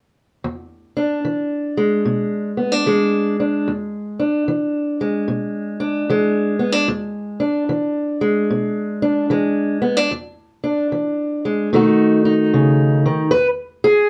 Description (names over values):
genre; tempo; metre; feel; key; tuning
acoustic country blues, solo or duo; 74 BPM; 4/4; swing 64% on 8ths; E mixolydian; A4 = 440 Hz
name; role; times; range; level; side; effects
fingerpicked steel-string acoustic guitar; solo; 0.4-14.1 s; E2 to B4; -19 LUFS; equal; none
room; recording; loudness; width
wet small room reverb, RT60 0.5 s; worn, warbling old tape, cassette tape, warbly pitch drift; -19 LUFS; mono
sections
0.4-13.3 A section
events
none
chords
0.4 E7; 11.7 B7; 13.3 E